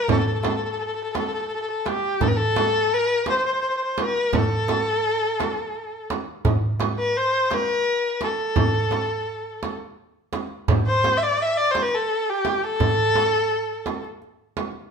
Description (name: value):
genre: Arabic maqam ensemble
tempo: 57 BPM (dotted quarters)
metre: 6/8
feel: straight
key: A maqam bayati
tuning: A4 = 440 Hz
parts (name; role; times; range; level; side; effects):
- rich erhu; melody; 0.0-14.0 s; G4 to E5; -22 LUFS; left 1 dB; none
- darbuka; percussion; 0.1-14.7 s; none; -27 LUFS; equal; none
- frame drum; percussion; 0.1-14.7 s; none; -26 LUFS; right 4 dB; none
room: wet studio reverb, RT60 0.9 s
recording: band playing live in one room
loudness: -20 LUFS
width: side -6 dB against mid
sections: 0.0-6.4 A section; 6.4-14.9 B section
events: none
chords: none